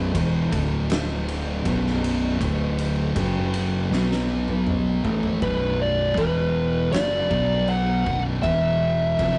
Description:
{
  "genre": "stoner and doom metal",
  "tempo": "80 BPM",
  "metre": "4/4",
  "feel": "straight",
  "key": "B minor",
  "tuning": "A4 = 439 Hz",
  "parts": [
    { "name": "thick fuzz guitar", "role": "riff", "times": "0.0-9.4 s", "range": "B1 to B3", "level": "-31 LUFS", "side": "equal", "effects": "distortion" },
    { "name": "thick fuzz guitar", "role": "riff", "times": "0.0-9.4 s", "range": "B1 to B3", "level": "-28 LUFS", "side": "equal", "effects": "distortion" },
    { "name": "fingered electric bass", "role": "bass", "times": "0.0-9.4 s", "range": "B0 to B1", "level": "-31 LUFS", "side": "equal", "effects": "overdrive" },
    { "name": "oversized low-tuned drum kit", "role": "drums", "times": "0.1-9.4 s", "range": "crash cymbal, kick drum, ride cymbal, snare drum, toms", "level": "-32 LUFS", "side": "equal", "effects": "none" },
    { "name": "fuzz lead guitar", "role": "melody", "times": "5.4-9.4 s", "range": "B4 to F#5", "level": "-26 LUFS", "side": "equal", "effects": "distortion" }
  ],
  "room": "light reverb",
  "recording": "rough rehearsal-room recording, nothing above 10.3 kHz",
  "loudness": "-23 LUFS",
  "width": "mono",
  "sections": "0.0-5.4 A section; 5.4-9.4 B section",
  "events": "drum fill 3.9-5.4",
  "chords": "0.0 B5; 0.5 D5; 1.6 B5; 2.4 D5; 3.2 F#5; 3.9 B5; 5.4 Bm; 6.2 E5; 6.9 Bm; 8.4 E5"
}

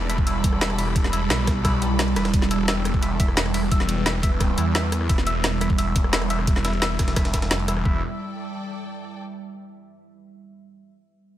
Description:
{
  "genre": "dark technical drum and bass",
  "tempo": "174 BPM",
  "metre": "4/4",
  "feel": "straight",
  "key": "E minor",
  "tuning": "A4 = 441 Hz",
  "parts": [
    { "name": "deep dark ambient pad", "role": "sustained chords", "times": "0.0-8.0 s", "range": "G3 to E5", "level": "-28 LUFS", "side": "right 3 dB", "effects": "chorus, built-in reverb, vintage 12-bit sampler grit, sidechain pumping" },
    { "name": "snarling distorted saw bass", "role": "bass", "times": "0.0-8.0 s", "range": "E1 to E2", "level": "-25 LUFS", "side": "equal", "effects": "distortion, tube saturation, sidechain pumping" },
    { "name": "rich symphonic string section", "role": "texture", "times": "0.0-9.2 s", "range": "A4 to B5", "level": "-37 LUFS", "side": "left 2 dB", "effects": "sidechain pumping" },
    { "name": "clean electric guitar", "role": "arpeggios", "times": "0.1-8.0 s", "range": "E4 to E5", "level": "-31 LUFS", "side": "left 2 dB", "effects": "spring reverb, sidechain pumping, low-pass filter, tape echo" },
    { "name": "breakbeat sampler-style drum kit", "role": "drums", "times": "0.1-7.8 s", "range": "hi-hat, ride cymbal, snare drum", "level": "-35 LUFS", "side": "right 1 dB", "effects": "none" },
    { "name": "drum and bass drum kit", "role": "drums", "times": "0.1-7.8 s", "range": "hi-hat, rim click, snare drum", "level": "-25 LUFS", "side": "equal", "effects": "overdrive, small room ambience" },
    { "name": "electronic kick drum", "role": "drums", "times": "0.2-7.9 s", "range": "none", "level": "-22 LUFS", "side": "equal", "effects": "overdrive, small room ambience" }
  ],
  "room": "light reverb",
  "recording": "none",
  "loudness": "-20 LUFS",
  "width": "side -12 dB against mid",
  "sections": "0.0-7.9 A section; 7.9-9.2 B section",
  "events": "fade-out on string section 0.0-7.9",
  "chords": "0.0 Em"
}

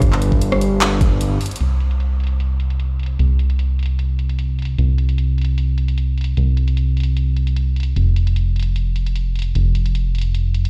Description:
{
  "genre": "future bass",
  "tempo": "151 BPM",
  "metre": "4/4",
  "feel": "swing 53% on 16ths, half-time",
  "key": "unclear",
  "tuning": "A4 = 440 Hz",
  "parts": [
    { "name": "fat analog bass", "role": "bass", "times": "0.0-10.7 s", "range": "F1 to C2", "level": "-19 LUFS", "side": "equal", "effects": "sidechain pumping" },
    { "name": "electronic kick drum", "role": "drums", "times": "0.0-1.1 s", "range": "none", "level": "-17 LUFS", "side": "equal", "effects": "studio reverb" },
    { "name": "trap drum kit", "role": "drums", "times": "0.0-10.7 s", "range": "handclaps, hi-hat, rim click", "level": "-28 LUFS", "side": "equal", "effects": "low-pass filter on snare, studio reverb, low-pass filter on hats" }
  ],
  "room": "little or no reverb",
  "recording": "played on a big sound system in a bare room, stone room reverb",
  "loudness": "-19 LUFS",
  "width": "mono",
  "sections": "0.0-1.6 A section; 1.6-10.7 B section",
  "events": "drop 0.0-1.6; break 1.2-1.6",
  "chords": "none"
}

